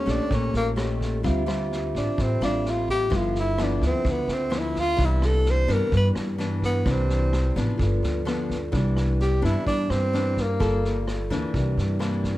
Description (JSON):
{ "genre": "bossa nova", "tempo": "128 BPM", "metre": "4/4", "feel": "straight", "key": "C major", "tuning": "A4 = 435 Hz", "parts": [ { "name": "breathy tenor saxophone", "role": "melody", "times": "0.0-11.1 s", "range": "Bb3 to C5", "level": "-26 LUFS", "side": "equal", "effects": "none" }, { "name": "nylon-string guitar", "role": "accompaniment", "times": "0.0-12.4 s", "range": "G2 to A4", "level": "-29 LUFS", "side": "left 2 dB", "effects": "none" }, { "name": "vibraphone with soft mallets", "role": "accompaniment", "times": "0.0-12.4 s", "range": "Bb3 to E5", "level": "-33 LUFS", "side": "equal", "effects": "none" }, { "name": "upright bass", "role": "bass", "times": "0.0-12.4 s", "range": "G1 to G2", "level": "-25 LUFS", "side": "equal", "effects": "none" }, { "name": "vintage drum kit", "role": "drums", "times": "0.1-12.3 s", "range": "kick drum, rim click, snare drum", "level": "-32 LUFS", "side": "equal", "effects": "none" } ], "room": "little or no reverb", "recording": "dark, warm production", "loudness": "-21 LUFS", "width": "side -16 dB against mid", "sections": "0.0-8.7 A section; 8.7-12.4 B section", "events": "tenor saxophone solo 0.0-8.7", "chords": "0.0 Eb7#11; 1.2 Dm11; 3.1 G13; 5.0 Cmaj9; 7.8 G7; 8.7 Cmaj9; 10.6 Gm9; 11.5 C9" }